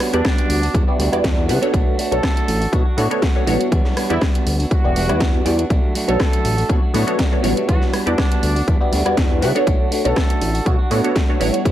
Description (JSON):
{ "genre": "filtered disco house", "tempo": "121 BPM", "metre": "4/4", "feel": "swing 54% on 16ths", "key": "B minor", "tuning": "A4 = 440 Hz", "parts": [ { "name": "funky polysynth comp", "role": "accompaniment", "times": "0.0-11.7 s", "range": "G3 to F#5", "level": "-21 LUFS", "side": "equal", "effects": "chorus, phaser, sidechain pumping, low-pass filter" }, { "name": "semi-hollow electric guitar", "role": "riff", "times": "0.0-11.7 s", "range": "F#3 to F#4", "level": "-24 LUFS", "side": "right 1 dB", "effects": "sidechain pumping, low-pass filter" }, { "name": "house drum kit", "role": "drums", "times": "0.0-11.7 s", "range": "hi-hat, rim click, snare drum", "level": "-25 LUFS", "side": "equal", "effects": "overdrive, sidechain pumping on hats" }, { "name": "warm trumpet section", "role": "melody", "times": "0.1-11.2 s", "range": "D4 to A4", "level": "-28 LUFS", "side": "right 2 dB", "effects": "sidechain pumping, low-pass filter, dub echo" }, { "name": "fat analog bass", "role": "bass", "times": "0.1-11.7 s", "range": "E1 to C#3", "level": "-20 LUFS", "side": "equal", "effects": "sidechain pumping, low-pass filter" }, { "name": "electronic kick drum", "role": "drums", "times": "0.2-11.7 s", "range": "none", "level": "-18 LUFS", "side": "equal", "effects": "overdrive" } ], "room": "little or no reverb", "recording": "none", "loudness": "-15 LUFS", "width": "side -12 dB against mid", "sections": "0.0-11.7 A section", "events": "none", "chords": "0.0 Em9; 1.7 Bm7; 3.7 Em9; 5.7 Bm7; 7.7 Em9; 9.7 Bm7" }